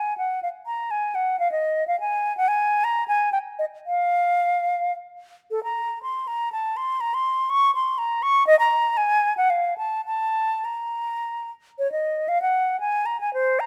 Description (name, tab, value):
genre	classical, baroque-style fantasia for unaccompanied flute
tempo	102-126 BPM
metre	3/4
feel	rubato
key	Bb minor from 5.5 s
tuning	A4 = 440 Hz
part	mellow silver concert flute	solo	0.0-13.7 s	A4 to Db6	-23 LUFS	equal	none
room	light reverb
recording	close, detailed microphones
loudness	-23 LUFS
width	mono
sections	0.0-11.8 A section; 11.8-13.7 B section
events	none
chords	none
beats	0.43 | 0.91 1.40 1.88 | 2.36 2.85 3.34 | 3.87 4.42 4.95 | 5.51 6.04 6.53 | 7.02 7.51 7.99 | 8.47 8.98 9.50 | 10.06 10.64 11.22 | 11.78 12.29 12.80 | 13.34